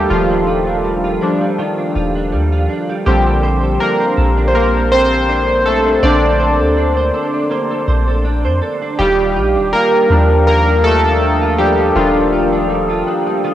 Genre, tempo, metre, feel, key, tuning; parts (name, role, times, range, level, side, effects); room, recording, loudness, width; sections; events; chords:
R&B; 81 BPM; 4/4; swing 54% on 16ths; Eb lydian; A4 = 441 Hz
warm analog keys; accompaniment; 0.0-13.5 s; D3 to D5; -14 LUFS; equal; chorus, cassette tape, plate reverb
direct-recorded clean electric guitar; arpeggios; 0.0-13.5 s; Eb3 to C5; -22 LUFS; right 4 dB; ensemble chorus, cassette tape, analog delay
soft 808-style bass; bass; 0.0-13.0 s; Eb1 to F2; -17 LUFS; equal
deep dark ambient pad; sustained chords; 10.4-13.5 s; D4 to Eb6; -22 LUFS; equal; chorus, built-in reverb, cassette tape, plate reverb
moderate small room reverb, RT60 0.5 s; home recording on cassette; -12 LUFS; side -12 dB against mid
0.0-13.5 A section
synth keys solo 0.0-13.5
0.0 Ebmaj9; 3.1 Bbmaj9; 9.0 Ebmaj9